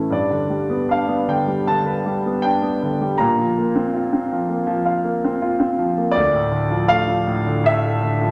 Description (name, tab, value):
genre	classical, lyrical solo piano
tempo	79 BPM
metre	4/4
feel	rubato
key	unclear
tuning	A4 = 440 Hz
part	clear concert grand piano	solo	0.0-8.3 s	D2 to Bb5	-20 LUFS	equal	none
room	moderate concert hall reverb, RT60 2.1 s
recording	none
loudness	-20 LUFS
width	mono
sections	0.0-8.3 A section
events	none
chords	0.1 G; 3.2 Bbsus2; 6.2 Dm